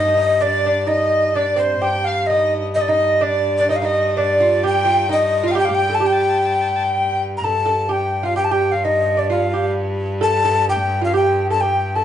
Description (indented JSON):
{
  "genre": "medieval dance",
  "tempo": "129 BPM",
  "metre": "3/4",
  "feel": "straight",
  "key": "unclear",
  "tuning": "A4 = 439 Hz",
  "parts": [
    { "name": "breathy mellow tenor recorder", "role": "melody", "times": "0.0-12.0 s", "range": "C5 to Bb5", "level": "-18 LUFS", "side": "left 2 dB", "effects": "none" },
    { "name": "dark fiddle", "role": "second line", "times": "0.0-7.2 s", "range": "C5 to A5", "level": "-25 LUFS", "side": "left 2 dB", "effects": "none" },
    { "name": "lute", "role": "second line", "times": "0.0-12.0 s", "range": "C4 to A4", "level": "-21 LUFS", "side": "right 3 dB", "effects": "none" },
    { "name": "rich viola da gamba", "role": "drone", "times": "0.0-12.0 s", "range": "G2", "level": "-24 LUFS", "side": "equal", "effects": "none" }
  ],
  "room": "wet studio reverb, RT60 0.6 s",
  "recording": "band playing live in one room, nothing above 10.5 kHz",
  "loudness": "-15 LUFS",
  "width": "side -10 dB against mid",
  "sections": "0.0-7.4 A section; 7.4-12.0 B section",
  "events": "none",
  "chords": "none"
}